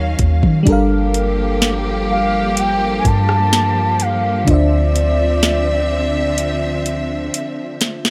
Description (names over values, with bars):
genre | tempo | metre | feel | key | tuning
contemporary R&B | 63 BPM | 4/4 | straight | D minor | A4 = 442 Hz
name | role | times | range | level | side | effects
FM electric piano with soft pad layer | accompaniment | 0.0-8.1 s | D3 to F5 | -23 LUFS | equal | chorus
warm studio string section | sustained chords | 0.0-8.1 s | D3 to F5 | -25 LUFS | equal | sidechain pumping
soft 808-style bass | bass | 0.0-7.3 s | G1 to Eb3 | -21 LUFS | equal | none
smooth R&B drum kit | drums | 0.2-8.1 s | hi-hat, kick drum, rim click, snare drum | -20 LUFS | equal | none
gliding portamento lead | melody | 2.1-7.8 s | D5 to A5 | -22 LUFS | equal | chorus, analog delay
room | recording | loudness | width
little or no reverb | dry, gritty hardware recording | -16 LUFS | mono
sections
0.0-8.1 A section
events
drum fill 6.4-8.1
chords
0.0 Ebm9; 0.7 Gm9; 4.5 Dm9